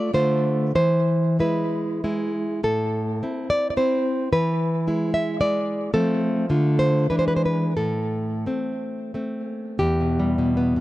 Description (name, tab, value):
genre	romantic piece for solo classical guitar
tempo	86-113 BPM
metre	3/4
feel	rubato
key	A minor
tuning	A4 = 439 Hz
part	nylon-string guitar	solo	0.0-10.8 s	E2 to E5	-20 LUFS	equal	tape echo
room	moderate booth ambience, RT60 0.2 s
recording	dry, close 1970s-style studio recording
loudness	-20 LUFS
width	side -16 dB against mid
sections	0.0-9.8 A section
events	none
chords	0.1 Dm; 0.8 E; 2.6 Am; 4.3 E; 5.9 F; 6.5 Dm; 7.1 E7; 7.8 Am; 9.8 Em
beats	0.14 | 0.75 1.39 2.02 | 2.63 3.22 3.77 | 4.32 4.87 5.41 | 5.94 6.49 7.11 | 7.76 8.46 9.14 | 9.81 10.39